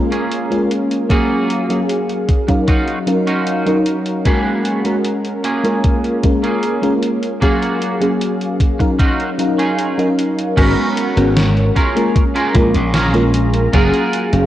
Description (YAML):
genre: vaporwave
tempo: 76 BPM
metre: 4/4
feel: straight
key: F# major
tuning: A4 = 439 Hz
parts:
  - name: FM electric piano with soft pad layer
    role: accompaniment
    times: 0.0-14.5 s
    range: F#3 to E#5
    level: -17 LUFS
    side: equal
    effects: ensemble chorus, analog delay
  - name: lush unison pad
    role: sustained chords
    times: 0.0-14.5 s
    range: F#3 to A#5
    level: -24 LUFS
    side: equal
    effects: chorus, vintage 12-bit sampler grit
  - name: clean electric guitar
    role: riff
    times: 0.1-14.3 s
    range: A#3 to A#4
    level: -22 LUFS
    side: right 2 dB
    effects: analog chorus, vintage 12-bit sampler grit, low-pass filter, analog delay
  - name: gated 80s digital drum machine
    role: drums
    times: 0.1-14.5 s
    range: crash cymbal, hi-hat, snare drum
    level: -25 LUFS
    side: equal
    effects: gated reverb, gated reverb snare, overdrive
  - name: electronic kick drum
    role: drums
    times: 1.1-13.9 s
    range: none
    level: -15 LUFS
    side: equal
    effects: overdrive
  - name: glassy slap bass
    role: bass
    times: 10.6-14.5 s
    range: F#1 to A#1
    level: -16 LUFS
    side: equal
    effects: none
room: moderate lush hall reverb, RT60 2.5 s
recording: worn, warbling old tape, cassette tape, warbly pitch drift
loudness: -13 LUFS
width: side -13 dB against mid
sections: 0.0-10.6 A section; 10.6-14.5 B section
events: none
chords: 0.0 A#m7; 1.1 F#maj9; 2.7 D#m9; 4.3 G#m11; 5.4 A#m7; 7.4 F#maj9; 10.6 G#m11; 11.8 A#m7; 13.7 F#maj9